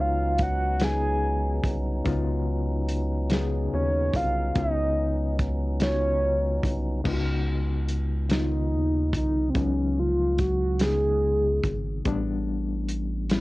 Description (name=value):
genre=slow six-eight R&B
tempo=48 BPM (dotted quarters)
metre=6/8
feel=straight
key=Db mixolydian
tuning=A4 = 440 Hz
part: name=soft octave-layered synth lead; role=melody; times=0.0-13.4 s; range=C4 to Ab5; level=-26 LUFS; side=right 1 dB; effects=chorus
part: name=reed electric piano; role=accompaniment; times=0.0-13.4 s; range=A2 to Ab4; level=-31 LUFS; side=left 4 dB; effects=overdrive, fast tremolo
part: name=percussive tonewheel organ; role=sustained chords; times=0.0-7.0 s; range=Gb3 to Eb4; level=-33 LUFS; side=right 1 dB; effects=overdrive, chorus vibrato, stopped rotary speaker
part: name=rubbery square bass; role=bass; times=0.0-13.4 s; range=Ab1 to Eb2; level=-27 LUFS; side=equal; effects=none
part: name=warm soul drum kit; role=drums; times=0.4-13.4 s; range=crash cymbal, hi-hat, kick drum, snare drum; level=-28 LUFS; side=equal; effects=cassette tape
room=light reverb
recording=home recording on cassette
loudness=-23 LUFS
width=side -19 dB against mid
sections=0.0-7.1 A section; 7.1-13.4 A section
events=none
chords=0.0 Db9sus4; 12.1 A9sus4